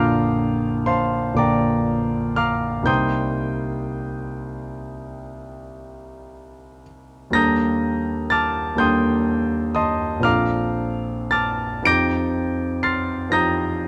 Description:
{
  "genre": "classical, impressionist solo piano",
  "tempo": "36-42 BPM (dotted quarters)",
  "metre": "9/8",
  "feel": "rubato",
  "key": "Bb major",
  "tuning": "A4 = 439 Hz",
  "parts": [
    { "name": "clear concert grand piano", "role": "solo", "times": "0.0-13.9 s", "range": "Bb1 to D7", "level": "-22 LUFS", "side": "equal", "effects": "none" }
  ],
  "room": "moderate scoring stage reverb, RT60 1.6 s",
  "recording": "close, detailed microphones",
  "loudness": "-21 LUFS",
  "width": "mono",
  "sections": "0.0-13.9 A section",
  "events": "none",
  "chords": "0.0 Bbmaj7; 2.9 Cm7; 7.4 Ebmaj7#11; 10.3 Bbmaj9; 11.9 F9sus4"
}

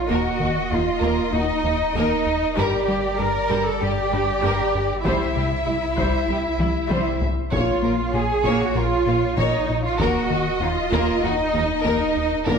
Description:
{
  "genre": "cinematic, hybrid orchestral and electronic film score",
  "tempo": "97 BPM",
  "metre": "4/4",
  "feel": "straight",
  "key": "unclear",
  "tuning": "A4 = 442 Hz",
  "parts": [
    { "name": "warm symphonic violin section", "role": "melody", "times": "0.0-12.6 s", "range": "Db5 to E5", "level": "-28 LUFS", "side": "left 6 dB", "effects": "none" },
    { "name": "pure sine sub bass", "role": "bass", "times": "0.0-12.6 s", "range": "Eb1 to C2", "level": "-32 LUFS", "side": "equal", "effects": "none" },
    { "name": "rich symphonic cello section", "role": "bass", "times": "0.0-12.6 s", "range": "D4 to Bb4", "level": "-23 LUFS", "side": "right 3 dB", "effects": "none" },
    { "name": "rich symphonic violin section", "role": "second line", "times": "0.1-12.6 s", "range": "D4 to Db5", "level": "-28 LUFS", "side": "left 3 dB", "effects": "none" },
    { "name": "rich chamber viola section", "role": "accompaniment", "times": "0.1-12.6 s", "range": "G3 to Bb3", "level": "-29 LUFS", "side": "right 2 dB", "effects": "none" },
    { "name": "rubbery square bass", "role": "riff", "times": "0.1-12.6 s", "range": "C2 to Bb3", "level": "-28 LUFS", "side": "left 3 dB", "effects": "none" },
    { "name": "rich symphonic double bass section", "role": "bass", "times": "0.1-12.6 s", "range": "G1 to G2", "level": "-31 LUFS", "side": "right 5 dB", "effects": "none" },
    { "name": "taiko ensemble", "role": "drums", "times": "2.6-12.6 s", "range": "none", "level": "-30 LUFS", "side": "equal", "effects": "none" }
  ],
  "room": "moderate concert hall reverb, RT60 2.1 s",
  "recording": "none",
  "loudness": "-19 LUFS",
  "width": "side -6 dB against mid",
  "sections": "0.0-12.6 A section",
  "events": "drum fill 6.6-7.5",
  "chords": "0.1 Ebm; 2.6 Gm; 5.1 C; 7.5 Bbm; 10.0 Ebm"
}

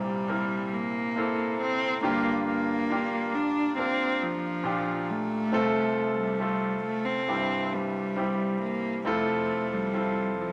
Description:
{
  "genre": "pop",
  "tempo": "68 BPM",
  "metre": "4/4",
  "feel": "straight",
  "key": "F major",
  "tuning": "A4 = 438 Hz",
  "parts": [
    { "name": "warm cello", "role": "melody", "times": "0.0-10.5 s", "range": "F3 to D4", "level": "-31 LUFS", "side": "equal", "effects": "none" },
    { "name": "bright concert grand piano", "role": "accompaniment", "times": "0.0-10.5 s", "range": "C2 to Bb4", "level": "-31 LUFS", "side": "equal", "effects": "none" }
  ],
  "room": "wet studio reverb, RT60 1.0 s",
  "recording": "none",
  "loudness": "-28 LUFS",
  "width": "mono",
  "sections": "0.0-10.5 A section",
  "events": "none",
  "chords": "0.0 C7; 2.0 Gm7; 5.5 F/C; 7.3 C; 9.1 Fmaj7"
}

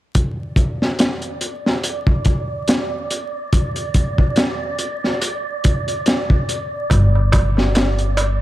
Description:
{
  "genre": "trip hop",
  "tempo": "71 BPM",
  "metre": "4/4",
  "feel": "swing 56% on 16ths",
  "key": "unclear",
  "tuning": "A4 = 439 Hz",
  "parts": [
    { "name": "crunchy breakbeat drum kit", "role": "drums", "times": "0.1-8.4 s", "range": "hi-hat, kick drum, snare drum", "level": "-17 LUFS", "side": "equal", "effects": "none" },
    { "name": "wind-like tuned noise texture", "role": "texture", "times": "0.7-8.4 s", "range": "D5", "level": "-26 LUFS", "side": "right 2 dB", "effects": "built-in reverb" },
    { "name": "upright bass", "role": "bass", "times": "6.9-8.4 s", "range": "G1", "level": "-16 LUFS", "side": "equal", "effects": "none" },
    { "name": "darbuka", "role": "percussion", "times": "6.9-8.4 s", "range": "none", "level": "-26 LUFS", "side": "right 2 dB", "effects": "none" }
  ],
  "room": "light reverb",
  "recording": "vinyl crackle",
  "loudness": "-16 LUFS",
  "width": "side -15 dB against mid",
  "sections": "0.2-8.4 A section",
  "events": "none",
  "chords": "0.2 N.C.; 6.9 G5"
}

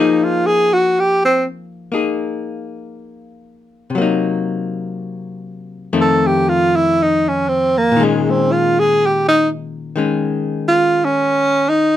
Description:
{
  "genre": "jazz ballad",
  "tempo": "60 BPM",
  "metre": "4/4",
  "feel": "swing 67% on 8ths",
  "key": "F minor",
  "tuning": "A4 = 439 Hz",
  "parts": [
    { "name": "breathy tenor saxophone", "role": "melody", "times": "0.0-12.0 s", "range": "Ab3 to A4", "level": "-13 LUFS", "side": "right 1 dB", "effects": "none" },
    { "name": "archtop guitar, miked and amplified", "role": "accompaniment", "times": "0.0-12.0 s", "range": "F2 to Ab4", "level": "-19 LUFS", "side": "left 4 dB", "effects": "none" }
  ],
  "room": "light reverb",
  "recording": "close, detailed microphones",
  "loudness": "-14 LUFS",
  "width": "side -12 dB against mid",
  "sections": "0.0-12.0 A section",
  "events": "tenor saxophone solo 0.0-12.0",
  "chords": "0.0 Fm7; 3.9 Cm7b5; 5.9 F7; 7.9 Bbm7"
}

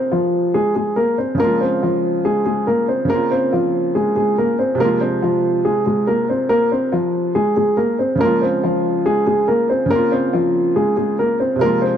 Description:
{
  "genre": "hip hop",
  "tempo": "141 BPM",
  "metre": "4/4",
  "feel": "half-time",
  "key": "unclear",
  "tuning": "A4 = 440 Hz",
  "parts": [
    { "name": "dark concert grand piano", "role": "melody", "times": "0.0-12.0 s", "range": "F3 to C5", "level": "-16 LUFS", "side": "equal", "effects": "tape echo" },
    { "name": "felt-muted upright piano", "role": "accompaniment", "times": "0.0-12.0 s", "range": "C3 to F4", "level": "-23 LUFS", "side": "right 2 dB", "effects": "none" }
  ],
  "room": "moderate scoring stage reverb, RT60 2.1 s",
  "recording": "dark, warm production",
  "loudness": "-15 LUFS",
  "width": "side -9 dB against mid",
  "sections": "0.0-4.8 A section; 4.8-12.0 B section",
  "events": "none",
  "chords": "0.0 Fm; 1.4 Db; 4.8 Fm; 8.2 Db"
}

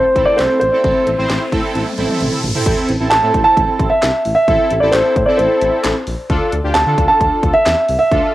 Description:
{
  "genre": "synth-pop",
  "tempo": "132 BPM",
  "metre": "4/4",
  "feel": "straight",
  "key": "unclear",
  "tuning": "A4 = 440 Hz",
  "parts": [
    { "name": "dark grand piano", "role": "melody", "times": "0.0-8.3 s", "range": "C5 to A5", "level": "-13 LUFS", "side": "right 1 dB", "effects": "cassette tape, tape echo" },
    { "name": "analog synth brass", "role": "accompaniment", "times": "0.0-8.3 s", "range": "C4 to C5", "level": "-20 LUFS", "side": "equal", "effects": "chorus, cassette tape" },
    { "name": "brassy analog pad", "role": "sustained chords", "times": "0.0-2.6 s", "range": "A3 to C4", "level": "-27 LUFS", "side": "left 2 dB", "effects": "none" },
    { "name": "riser", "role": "sound effects", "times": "0.9-2.7 s", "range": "none", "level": "-28 LUFS", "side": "equal", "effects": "none" },
    { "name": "smooth synth bass", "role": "bass", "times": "0.2-8.2 s", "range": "A1 to D3", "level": "-21 LUFS", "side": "equal", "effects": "none" },
    { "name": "house drum kit", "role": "drums", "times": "0.2-8.2 s", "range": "crash cymbal, handclaps, hi-hat, kick drum, snare drum, toms", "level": "-20 LUFS", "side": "equal", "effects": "cassette tape" }
  ],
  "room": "moderate spring reverb, RT60 1.9 s",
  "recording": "home recording on cassette",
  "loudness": "-12 LUFS",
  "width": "side -15 dB against mid",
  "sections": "0.0-2.7 A section; 2.7-8.3 B section",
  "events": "riser 0.9-2.7; drum fill 1.8-2.7",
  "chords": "0.0 Am; 6.3 Dmadd9"
}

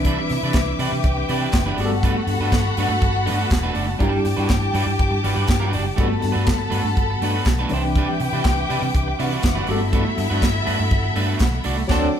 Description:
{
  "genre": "disco",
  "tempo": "122 BPM",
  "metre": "4/4",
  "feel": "straight",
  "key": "G major",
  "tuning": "A4 = 441 Hz",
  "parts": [
    { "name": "warm studio violin section", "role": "second line", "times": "0.0-12.1 s", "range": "D4 to A5", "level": "-27 LUFS", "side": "left 2 dB", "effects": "none" },
    { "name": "electric guitar at the edge of break-up", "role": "accompaniment", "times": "0.0-12.1 s", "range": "G3 to D5", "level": "-27 LUFS", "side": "right 4 dB", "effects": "vibrato effect" },
    { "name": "tine electric piano", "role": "accompaniment", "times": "0.0-12.2 s", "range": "E3 to B4", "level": "-27 LUFS", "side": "left 1 dB", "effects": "medium tremolo" },
    { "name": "clear studio string section", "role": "sustained chords", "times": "0.0-12.2 s", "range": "G4 to D6", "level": "-29 LUFS", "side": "left 2 dB", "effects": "none" },
    { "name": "fingered electric bass", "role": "bass", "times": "0.0-12.1 s", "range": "E1 to C3", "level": "-24 LUFS", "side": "equal", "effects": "none" },
    { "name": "tight funk drum kit", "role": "drums", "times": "0.0-12.1 s", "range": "crash cymbal, handclaps, hi-hat, kick drum, snare drum", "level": "-23 LUFS", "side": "equal", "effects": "none" }
  ],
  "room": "moderate large studio reverb, RT60 1.0 s",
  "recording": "band playing live in one room",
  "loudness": "-18 LUFS",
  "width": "side -9 dB against mid",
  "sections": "0.0-12.2 A section",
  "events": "band accent 11.9-12.2",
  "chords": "0.0 Cmaj9; 1.8 Gmaj9; 4.0 Em9/G; 6.0 Gmaj9; 7.7 Cmaj9; 9.7 Gmaj9"
}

